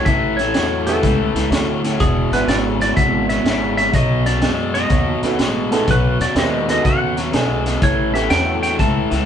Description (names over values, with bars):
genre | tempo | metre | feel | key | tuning
electric blues shuffle | 124 BPM | 4/4 | swing 67% on 8ths | unclear | A4 = 439 Hz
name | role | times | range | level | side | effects
clean lap steel guitar | melody | 0.0-9.1 s | G#4 to A5 | -21 LUFS | equal | none
cranked stack guitar | riff | 0.0-9.3 s | E2 to G#3 | -20 LUFS | left 2 dB | overdrive
upright bass | bass | 0.0-9.3 s | E1 to F#2 | -22 LUFS | equal | none
crunchy breakbeat drum kit | drums | 0.1-9.2 s | hi-hat, kick drum, snare drum | -21 LUFS | equal | none
bright upright piano | accompaniment | 0.9-8.8 s | G#3 to A4 | -24 LUFS | right 4 dB | none
room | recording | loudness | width
moderate studio reverb, RT60 0.7 s | band playing live in one room, nothing above 10.8 kHz | -15 LUFS | side -8 dB against mid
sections
0.0-9.3 A section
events
none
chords
0.0 A7; 2.0 E7; 3.9 B7; 7.8 A7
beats
| 0.06 0.54 1.03 1.51 | 2.00 2.48 2.97 3.45 | 3.94 4.42 4.91 5.39 | 5.88 6.36 6.85 7.33 | 7.82 8.30 8.79